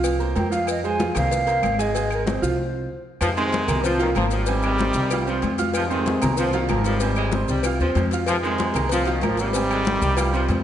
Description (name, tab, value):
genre	latin, salsa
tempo	190 BPM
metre	4/4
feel	straight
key	F minor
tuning	A4 = 441 Hz
part	clear baby grand piano	accompaniment	0.0-10.6 s	F3 to F6	-26 LUFS	right 3 dB	none
part	upright bass	bass	0.0-10.6 s	Ab1 to F2	-25 LUFS	equal	none
part	agogo bells and timbales	percussion	0.0-10.6 s	none	-34 LUFS	right 5 dB	none
part	claves	percussion	0.0-10.3 s	none	-40 LUFS	left 7 dB	none
part	cowbell	percussion	0.0-10.6 s	none	-32 LUFS	left 6 dB	none
part	maracas	percussion	0.0-10.6 s	none	-38 LUFS	left 7 dB	none
part	congas	percussion	0.1-10.6 s	none	-30 LUFS	left 3 dB	none
part	mellow hollow jazz flute	melody	0.4-3.0 s	Bb4 to Ab5	-25 LUFS	right 1 dB	none
part	brilliant trombone section	melody	3.2-10.6 s	Ab2 to Ab3	-25 LUFS	left 1 dB	none
part	bright saxophone section	second line	3.2-10.6 s	Eb3 to Ab3	-29 LUFS	left 1 dB	none
room	wet scoring stage reverb, RT60 1.6 s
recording	nothing above 10.8 kHz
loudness	-19 LUFS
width	side -10 dB against mid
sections	0.0-3.2 A section; 3.2-10.6 B section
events	stop 2.6-3.2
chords	0.0 C7sus4; 0.7 Fm; 1.3 C7sus4; 1.9 Ab; 2.6 N.C.; 3.2 Fm7; 3.8 C7sus4; 4.5 Abmaj7; 5.1 Csus4; 5.7 Fm7; 6.4 C7sus4; 7.0 Abmaj7; 7.6 Csus4; 8.3 Fm7; 8.9 C7sus4; 9.5 Abmaj7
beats	0.04 0.36 | 0.67 0.99 1.31 1.63 | 1.94 2.26 2.58 2.90 | 3.21 3.53 3.85 4.16 | 4.48 4.79 5.11 5.43 | 5.75 6.06 6.38 6.69 | 7.01 7.33 7.64 7.96 | 8.28 8.59 8.91 9.22 | 9.54 9.86 10.17 10.49